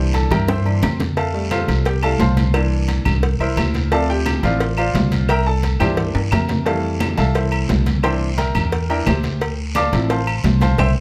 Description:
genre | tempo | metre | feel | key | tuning
latin, salsa | 175 BPM | 4/4 | straight | unclear | A4 = 441 Hz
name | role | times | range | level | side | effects
bright upright piano | accompaniment | 0.0-10.9 s | E3 to D6 | -24 LUFS | equal | none
upright bass | bass | 0.0-10.9 s | A1 to G2 | -21 LUFS | equal | none
congas | percussion | 0.1-10.9 s | none | -28 LUFS | equal | none
cowbell and bongos | percussion | 0.1-10.9 s | none | -29 LUFS | equal | none
guiro | percussion | 0.1-10.9 s | none | -37 LUFS | equal | none
timbales and agogo bells | percussion | 0.1-10.9 s | none | -29 LUFS | equal | none
claves | percussion | 1.5-10.9 s | none | -33 LUFS | equal | none
room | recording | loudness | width
light reverb | close, detailed microphones | -18 LUFS | mono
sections
0.0-11.0 A section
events
upright piano solo 0.0-11.0; drum fill 0.3-1.2, 6.1-6.7, 10.8; band accent 10.8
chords
0.0 C7; 1.2 Fmaj7; 2.5 C7; 3.9 Dm7; 5.3 C7; 6.7 Fmaj7; 8.0 C7; 9.4 Dm7

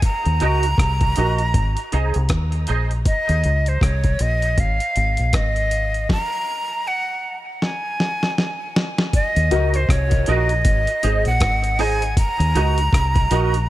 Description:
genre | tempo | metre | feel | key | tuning
dub reggae | 79 BPM | 4/4 | swing 59% on 16ths | Eb dorian | A4 = 442 Hz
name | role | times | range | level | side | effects
breathy bright jazz flute | melody | 0.0-13.7 s | C5 to Bb5 | -22 LUFS | right 1 dB | dub echo
dusty soul sampler-style drum kit | drums | 0.0-13.7 s | hi-hat, kick drum, rim click, snare drum | -21 LUFS | equal | none
deep dub fingered electric bass | bass | 0.3-13.7 s | Ab1 to Eb2 | -20 LUFS | equal | none
clean electric guitar | accompaniment | 0.4-2.9, 9.5-13.5 s | Eb4 to Eb5 | -26 LUFS | right 4 dB | ensemble chorus, high-pass filter, dub echo
dark upright piano | stabs | 9.5-9.7 s | Gb4 to Eb5 | -29 LUFS | left 8 dB | dub echo
room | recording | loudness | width
digital ambience | none | -17 LUFS | side -15 dB against mid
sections
0.0-9.1 A section; 9.1-13.7 B section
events
filter sweep on clean electric guitar 0.0-6.1; stop 6.1-9.1; drum fill 7.6-9.1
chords
0.0 Ebm; 1.5 Ab; 3.1 Eb5; 4.6 Ab5; 6.1 N.C.; 9.1 Ebm; 10.7 Ab; 12.2 Ebm

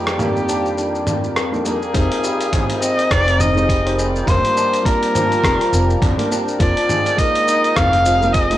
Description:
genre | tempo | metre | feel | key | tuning
organic downtempo | 103 BPM | 4/4 | swing 57% on 16ths | unclear | A4 = 440 Hz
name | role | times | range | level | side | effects
rich kamancheh | melody | 0.0-8.6 s | G4 to F5 | -19 LUFS | equal | tape echo
felt-muted upright piano | accompaniment | 0.0-8.6 s | F2 to D5 | -25 LUFS | right 1 dB | sidechain pumping, cassette tape, analog delay
warm analog pad | sustained chords | 0.0-8.6 s | F2 to G5 | -30 LUFS | equal | none
santur | arpeggios | 0.0-8.6 s | F3 to Eb4 | -23 LUFS | left 2 dB | cassette tape, analog delay, plate reverb
bronze singing bowl | texture | 0.0-8.6 s | F3 to C5 | -31 LUFS | left 2 dB | none
dusty soul sampler-style drum kit | drums | 0.1-8.6 s | hi-hat, rim click, shaker, toms | -23 LUFS | equal | cassette tape
upright bass | bass | 1.9-8.6 s | F1 | -19 LUFS | equal | tube saturation, sidechain pumping
electronic kick drum | drums | 1.9-8.5 s | none | -20 LUFS | equal | cassette tape
room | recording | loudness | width
moderate studio reverb, RT60 0.5 s | home recording on cassette | -14 LUFS | side -13 dB against mid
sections
0.0-1.9 A section; 1.9-8.6 B section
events
filter sweep on santur 0.0-1.9; filter sweep on analog synth pad 0.0-1.9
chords
0.0 Ebmaj7/F; 1.9 Abmaj7/F; 4.3 Gm7/F; 6.6 Bb7sus4/F

